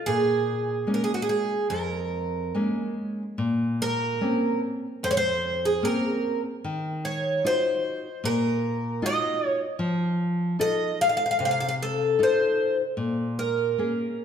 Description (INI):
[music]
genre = fado-style ballad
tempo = 75 BPM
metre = 4/4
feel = rubato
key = Bb minor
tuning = A4 = 440 Hz
[part]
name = picked twelve-string acoustic guitar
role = melody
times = 0.0-14.2 s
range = Gb4 to F5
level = -25 LUFS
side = right 1 dB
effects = none
[part]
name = nylon-string guitar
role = accompaniment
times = 0.1-14.2 s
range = F2 to A4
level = -27 LUFS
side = left 1 dB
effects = none
[sound]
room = wet recital hall reverb, RT60 1.6 s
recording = none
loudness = -23 LUFS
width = side -8 dB against mid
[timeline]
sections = 0.0-3.4 A section; 3.4-14.2 A section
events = none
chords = 0.1 Bbm7; 3.4 Bbmadd9; 6.6 Ebmadd9; 9.8 F7; 13.0 Bbm7